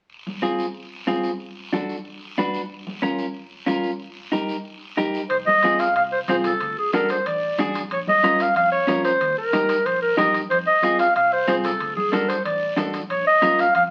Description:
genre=latin, cumbia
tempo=185 BPM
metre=4/4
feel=straight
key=unclear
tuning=A4 = 440 Hz
part: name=guiro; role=percussion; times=0.1-13.9 s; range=none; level=-41 LUFS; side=equal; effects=none
part: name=congas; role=percussion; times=0.3-13.6 s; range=none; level=-35 LUFS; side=equal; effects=none
part: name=clean electric guitar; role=accompaniment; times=0.4-13.7 s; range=C4 to B4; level=-27 LUFS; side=equal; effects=none
part: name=warm clarinet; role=melody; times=5.3-13.8 s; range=Ab4 to F5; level=-21 LUFS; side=equal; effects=none
part: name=vintage muted fingered electric bass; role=bass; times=5.3-13.9 s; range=F1 to F2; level=-41 LUFS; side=equal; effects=none
part: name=timbales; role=percussion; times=5.3-13.9 s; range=none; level=-36 LUFS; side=equal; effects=none
room=wet club reverb, RT60 0.9 s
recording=very old 78 rpm record, vinyl crackle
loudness=-22 LUFS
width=mono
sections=0.1-5.3 A section; 5.3-13.9 B section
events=none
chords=0.1 Fm; 1.4 D; 2.7 Bbm; 4.0 Eb; 5.3 Fm; 6.6 D; 7.9 Bbm; 9.2 Eb; 10.5 Fm; 11.8 D; 13.1 Bbm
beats=| 0.10 0.43 0.75 1.08 | 1.40 1.73 2.05 2.38 | 2.71 3.03 3.35 3.68 | 4.01 4.33 4.66 4.98 | 5.31 5.63 5.96 6.28 | 6.61 6.93 7.25 7.58 | 7.91 8.23 8.55 8.88 | 9.20 9.53 9.85 10.18 | 10.50 10.83 11.15 11.48 | 11.80 12.13 12.45 12.78 | 13.10 13.43 13.75

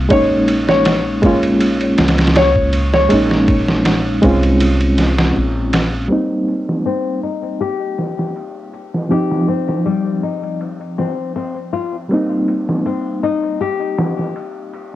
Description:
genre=trip hop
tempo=80 BPM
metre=4/4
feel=swing 54% on 16ths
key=C phrygian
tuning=A4 = 437 Hz
part: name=reed electric piano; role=accompaniment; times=0.0-15.0 s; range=F3 to F4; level=-17 LUFS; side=right 1 dB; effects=harmonic tremolo, vintage 12-bit sampler grit, low-pass filter, cassette tape, tape echo
part: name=upright bass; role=bass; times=0.0-6.1 s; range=Bb1 to Db2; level=-19 LUFS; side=equal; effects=none
part: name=felt-muted upright piano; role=melody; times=0.1-3.6 s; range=Db5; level=-18 LUFS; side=left 1 dB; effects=cassette tape, tape echo
part: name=trip hop sampler-style drum kit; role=drums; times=0.1-14.9 s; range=kick drum, ride cymbal, snare drum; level=-19 LUFS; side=right 1 dB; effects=low-pass filter on cymbals, cassette tape, low-pass filter on snare, low-pass filter on kick
part: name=nylon-string guitar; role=arpeggios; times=6.9-15.0 s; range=G3 to G4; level=-21 LUFS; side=left 7 dB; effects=low-pass filter, cassette tape, tape echo
room=light reverb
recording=home recording on cassette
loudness=-14 LUFS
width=side -14 dB against mid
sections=0.0-6.1 A section; 6.1-15.0 B section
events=filter sweep on reed electric piano 6.1-15.0; filter sweep on nylon-string guitar 6.1-15.0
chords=0.1 Bbm11; 6.1 Cm7; 9.1 Cmadd11/F; 12.1 Cm7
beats=| 0.11 0.86 1.61 2.36 | 3.11 3.86 4.61 5.36 | 6.11 6.86 7.61 8.36 | 9.11 9.86 10.61 11.36 | 12.11 12.86 13.61 14.36

